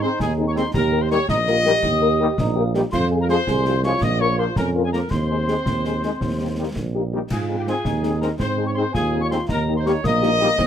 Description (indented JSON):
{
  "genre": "military-style march for wind band",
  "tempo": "110 BPM (dotted quarters)",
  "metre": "6/8",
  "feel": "straight",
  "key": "Ab major",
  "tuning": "A4 = 440 Hz",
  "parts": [
    { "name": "bright trumpet section", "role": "melody", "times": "0.0-10.7 s", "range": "G4 to Eb5", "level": "-24 LUFS", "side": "left 2 dB", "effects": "none" },
    { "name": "clear euphonium", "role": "second line", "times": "0.0-10.7 s", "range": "Bb3 to Ab4", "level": "-27 LUFS", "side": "right 5 dB", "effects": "none" },
    { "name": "piccolo", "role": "second line", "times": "0.0-10.7 s", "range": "G5 to Eb6", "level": "-28 LUFS", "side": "left 5 dB", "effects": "none" },
    { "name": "mellow French horn section", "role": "accompaniment", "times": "0.0-10.5 s", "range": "F3 to Bb4", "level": "-25 LUFS", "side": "left 5 dB", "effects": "none" },
    { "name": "clear trombone section", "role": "sustained chords", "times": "0.0-10.5 s", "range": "Eb3 to C4", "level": "-29 LUFS", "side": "equal", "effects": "none" },
    { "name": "warm tuba", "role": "bass", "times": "0.0-10.7 s", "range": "Bb1 to Ab2", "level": "-23 LUFS", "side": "right 2 dB", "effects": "none" },
    { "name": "concert snare drum, concert bass drum and clash cymbals", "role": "drums", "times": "0.2-10.7 s", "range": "none", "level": "-28 LUFS", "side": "left 1 dB", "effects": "none" }
  ],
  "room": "light reverb",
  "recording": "none",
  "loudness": "-18 LUFS",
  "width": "side -9 dB against mid",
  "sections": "0.0-10.7 A section",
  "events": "none",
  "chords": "0.0 Ab; 0.7 Eb; 2.9 Fm; 4.0 Bbm; 5.1 Ab/Eb; 6.2 Eb; 7.3 Ab; 9.5 Eb",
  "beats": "0.20 | 0.74 1.29 | 1.83 2.38 | 2.93 3.47 | 4.02 4.57 | 5.11 5.66 | 6.21 6.75 | 7.30 7.85 | 8.40 8.94 | 9.49 10.04 | 10.59"
}